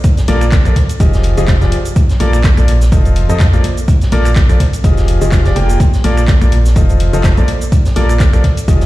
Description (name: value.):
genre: piano house.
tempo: 125 BPM.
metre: 4/4.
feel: swing 55% on 16ths.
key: Bb major.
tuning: A4 = 441 Hz.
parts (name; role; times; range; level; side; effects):
electronic kick drum; drums; 0.0-8.8 s; none; -10 LUFS; equal; overdrive.
house drum kit; drums; 0.0-8.9 s; cabasa, finger snaps, handclaps, hi-hat; -25 LUFS; equal; none.
vintage drum kit; drums; 0.0-8.9 s; hi-hat, snare drum; -31 LUFS; right 2 dB; sidechain pumping on hats, high-pass filter on hats, high-pass filter on snare, high-pass filter on room.
clear grand piano; riff; 0.3-8.9 s; F3 to G5; -18 LUFS; left 1 dB; sidechain pumping, ping-pong delay.
organ-like FM bass; bass; 0.3-8.9 s; F1 to F2; -12 LUFS; equal; sidechain pumping.
room: small room ambience.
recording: played on a big sound system in a bare room, large studio reverb.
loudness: -9 LUFS.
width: side -17 dB against mid.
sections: 0.0-8.9 A section.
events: none.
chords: 0.0 Bbmaj7; 0.8 Fm9; 2.0 Bbmaj7; 2.9 F7; 3.6 Bbmaj7; 4.6 Fm9; 5.8 Bbmaj7; 6.8 F7; 7.5 Bbmaj7.